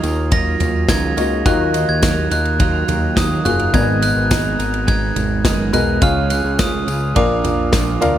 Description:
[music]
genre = piano-driven pop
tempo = 105 BPM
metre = 4/4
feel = straight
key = Eb minor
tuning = A4 = 440 Hz
[part]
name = glockenspiel with brass mallets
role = melody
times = 0.0-8.0 s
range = D6 to Bb6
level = -22 LUFS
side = right 1 dB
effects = none
[part]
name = warm baby grand piano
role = accompaniment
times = 0.0-8.2 s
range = Ab2 to F5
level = -22 LUFS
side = left 3 dB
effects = none
[part]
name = twelve-string electric guitar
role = riff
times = 0.0-8.2 s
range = Ab2 to Bb4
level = -22 LUFS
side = right 6 dB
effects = none
[part]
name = fat analog bass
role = bass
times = 0.0-8.2 s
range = Gb1 to Eb2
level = -20 LUFS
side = equal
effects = none
[part]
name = modern studio drum kit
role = drums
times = 0.0-8.2 s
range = kick drum, ride cymbal, snare drum, toms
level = -20 LUFS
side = equal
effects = none
[part]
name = tambourine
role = percussion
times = 0.0-8.1 s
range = none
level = -35 LUFS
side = left 9 dB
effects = none
[sound]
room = light reverb, studio reverb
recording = faint mains hum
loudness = -14 LUFS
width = side -11 dB against mid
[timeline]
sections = 0.0-8.2 A section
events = none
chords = 0.0 Ebmadd9; 3.7 Abmadd9; 6.0 Db; 7.2 Bb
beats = 0.32 0.89 | 1.46 2.03 2.60 3.17 | 3.74 4.31 4.88 5.45 | 6.02 6.59 7.16 7.73

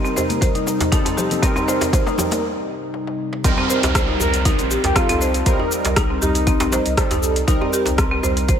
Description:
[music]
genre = afro house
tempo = 119 BPM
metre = 4/4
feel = swing 53% on 16ths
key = C dorian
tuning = A4 = 439 Hz
[part]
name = warm analog pad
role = sustained chords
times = 0.0-3.4 s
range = C3 to Eb4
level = -26 LUFS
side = left 2 dB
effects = chorus, sidechain pumping
[part]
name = buzzing marimba with medium hard mallets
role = arpeggios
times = 0.0-8.6 s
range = C4 to C5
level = -23 LUFS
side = equal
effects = sidechain pumping, ping-pong delay
[part]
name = warm analog keys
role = stabs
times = 0.0-8.6 s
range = G3 to Bb4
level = -24 LUFS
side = right 2 dB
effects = chorus, phaser, sidechain pumping, ping-pong delay
[part]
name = deep house drum kit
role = drums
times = 0.1-8.6 s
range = cabasa, hi-hat, rim click, toms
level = -25 LUFS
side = left 1 dB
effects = high-pass filter on hats, small room ambience, high-pass filter on toms, high-pass filter on perc, high-pass filter on snare
[part]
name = djembe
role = percussion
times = 0.2-8.6 s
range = none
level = -27 LUFS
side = right 1 dB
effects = none
[part]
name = congas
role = percussion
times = 0.3-2.4 s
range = none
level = -29 LUFS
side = left 4 dB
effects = none
[part]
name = electronic kick drum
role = drums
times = 0.4-8.6 s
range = none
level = -19 LUFS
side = equal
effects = overdrive, small room ambience
[part]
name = warm sub bass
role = bass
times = 3.4-8.6 s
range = Bb1 to C2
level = -24 LUFS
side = equal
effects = tube saturation, sidechain pumping
[part]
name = downlifter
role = sound effects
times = 3.4-7.5 s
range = none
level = -27 LUFS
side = right 2 dB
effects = none
[part]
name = expressive synth lead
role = melody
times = 4.2-6.9 s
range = Eb4 to Bb4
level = -25 LUFS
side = left 3 dB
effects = wide subtle chorus, ping-pong delay
[sound]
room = light reverb, digital ambience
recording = none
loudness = -16 LUFS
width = side -8 dB against mid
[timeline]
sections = 0.0-3.4 A section; 3.4-8.6 B section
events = build-up 0.0-3.4; drum fill 0.0-2.4, 2.9-3.4; break 2.4-3.4; drop 3.4-8.6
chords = 0.0 Cm7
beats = 0.42 0.92 | 1.43 1.93 2.44 2.94 | 3.44 3.95 4.45 4.96 | 5.46 5.97 6.47 6.97 | 7.48 7.98 8.49

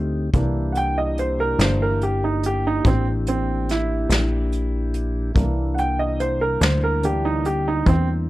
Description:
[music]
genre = slow blues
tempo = 48 BPM (dotted quarters)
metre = 12/8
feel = straight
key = C mixolydian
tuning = A4 = 439 Hz
[part]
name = warm upright piano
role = accompaniment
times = 0.0-8.1 s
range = E3 to G5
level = -24 LUFS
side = right 2 dB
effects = none
[part]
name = mellow tonewheel organ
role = sustained chords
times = 0.0-8.3 s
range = G3 to G4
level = -29 LUFS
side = left 2 dB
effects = slow rotary speaker
[part]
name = plucky analog bass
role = bass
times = 0.0-8.3 s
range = G1 to E2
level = -22 LUFS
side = equal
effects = none
[part]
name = vintage brush drum kit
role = drums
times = 0.3-8.1 s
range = hi-hat, kick drum, snare drum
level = -22 LUFS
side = equal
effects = none
[sound]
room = small room ambience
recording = dark, warm production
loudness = -19 LUFS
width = side -17 dB against mid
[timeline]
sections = 0.0-8.3 A section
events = upright piano solo 0.0-8.3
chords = 0.3 C7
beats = | 0.34 1.59 2.85 4.10 | 5.36 6.61 7.87

